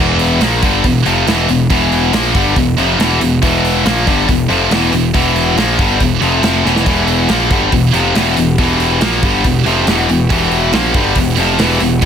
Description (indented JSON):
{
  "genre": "heavy metal",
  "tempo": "140 BPM",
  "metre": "4/4",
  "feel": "straight",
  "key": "E minor",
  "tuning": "A4 = 442 Hz",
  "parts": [
    { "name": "heavy high-gain guitar", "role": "riff", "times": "0.0-12.1 s", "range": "E2 to A#3", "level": "-15 LUFS", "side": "right 11 dB", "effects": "distortion" },
    { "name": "tight distorted guitar", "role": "riff", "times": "0.0-12.1 s", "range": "E2 to A#3", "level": "-15 LUFS", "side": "left 10 dB", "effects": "distortion" },
    { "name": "fuzz picked electric bass", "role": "bass", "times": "0.0-12.1 s", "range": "E1 to A#1", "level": "-18 LUFS", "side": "equal", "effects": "overdrive" },
    { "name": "modern studio drum kit", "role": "drums", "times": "0.2-12.1 s", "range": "crash cymbal, hi-hat, kick drum, snare drum", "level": "-18 LUFS", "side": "right 1 dB", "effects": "none" },
    { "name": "warm studio string section", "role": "sustained chords", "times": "6.9-12.1 s", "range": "E3 to G4", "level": "-25 LUFS", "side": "right 1 dB", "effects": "none" }
  ],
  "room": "light reverb",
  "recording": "none",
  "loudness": "-10 LUFS",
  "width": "side -8 dB against mid",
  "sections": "0.0-12.1 A section",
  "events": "drum fill 6.7",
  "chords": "0.0 Em"
}